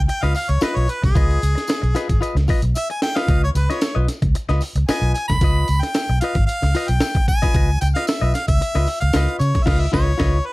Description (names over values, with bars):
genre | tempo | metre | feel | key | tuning
funk | 113 BPM | 4/4 | straight | Db mixolydian | A4 = 440 Hz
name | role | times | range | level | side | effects
vintage muted fingered electric bass | bass | 0.0-10.4 s | Ab1 to Db3 | -18 LUFS | equal | none
clear harmonica | melody | 0.1-10.5 s | Ab4 to Cb6 | -24 LUFS | equal | none
clean electric guitar | accompaniment | 0.1-10.4 s | F4 to Eb5 | -26 LUFS | left 3 dB | none
breakbeat sampler-style drum kit | drums | 0.1-10.4 s | crash cymbal, hi-hat, kick drum, snare drum | -21 LUFS | equal | none
tambourine | percussion | 0.3-9.5 s | none | -40 LUFS | left 3 dB | none
room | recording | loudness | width
little or no reverb | vinyl crackle | -16 LUFS | side -20 dB against mid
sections
0.0-10.5 A section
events
harmonica solo 0.0-10.5; drum fill 2.8-3.3; band accent 9.7-10.5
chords
0.0 Db9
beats
0.08 0.62 | 1.15 1.69 2.22 2.75 | 3.29 3.82 4.35 4.88 | 5.42 5.95 6.48 7.01 | 7.55 8.08 8.61 9.14 | 9.67 10.20